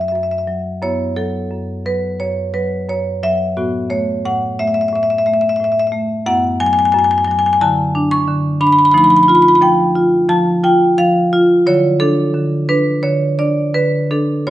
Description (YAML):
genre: classical, contemporary piece for solo marimba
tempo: 88 BPM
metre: 4/4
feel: rubato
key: unclear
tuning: A4 = 440 Hz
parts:
  - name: marimba with medium hard mallets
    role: solo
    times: 0.0-14.5 s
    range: F#2 to C#6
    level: -13 LUFS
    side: equal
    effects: none
room: wet stone room reverb, RT60 1.1 s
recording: nothing above 10.5 kHz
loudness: -13 LUFS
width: side -13 dB against mid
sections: 0.0-14.5 A section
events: none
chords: 0.0 A/F#; 0.8 F#m7; 3.6 Asus2; 6.3 F#9sus4; 7.6 Dadd9; 9.0 F9; 11.7 Dadd9